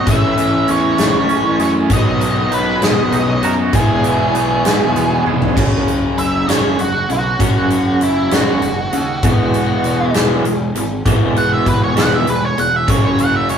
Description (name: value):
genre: quiet-loud alternative rock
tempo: 66 BPM (dotted quarters)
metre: 6/8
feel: straight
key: unclear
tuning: A4 = 441 Hz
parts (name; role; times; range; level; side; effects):
- octave-fuzz lead guitar; melody; 0.0-13.6 s; E4 to F#5; -19 LUFS; right 3 dB; distortion, slapback echo
- twangy electric guitar; arpeggios; 0.0-12.9 s; E2 to G#4; -24 LUFS; right 4 dB; tremolo
- overdriven electric guitar; riff; 0.0-13.6 s; F#2 to E4; -18 LUFS; left 3 dB; none
- thick fuzz guitar; riff; 0.0-5.6, 12.9-13.6 s; F#2 to E4; -23 LUFS; right 5 dB; distortion
- fuzz picked electric bass; bass; 0.0-13.6 s; E1 to G#2; -22 LUFS; equal; overdrive
- huge arena drum kit; drums; 0.1-13.6 s; crash cymbal, hi-hat, kick drum, snare drum, toms; -18 LUFS; equal; none
room: light reverb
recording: rough rehearsal-room recording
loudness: -13 LUFS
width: side -8 dB against mid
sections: 0.0-5.6 A section; 5.6-13.6 B section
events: drum fill 5.3-5.6; lead electric guitar solo 5.6-13.6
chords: 0.1 Amaj7; 1.9 B; 3.7 E; 5.6 F#5; 9.2 E; 12.9 F#5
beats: | 0.07 0.99 | 1.90 2.82 | 3.73 4.65 | 5.57 6.48 | 7.40 8.31 | 9.23 10.15 | 11.06 11.98 | 12.89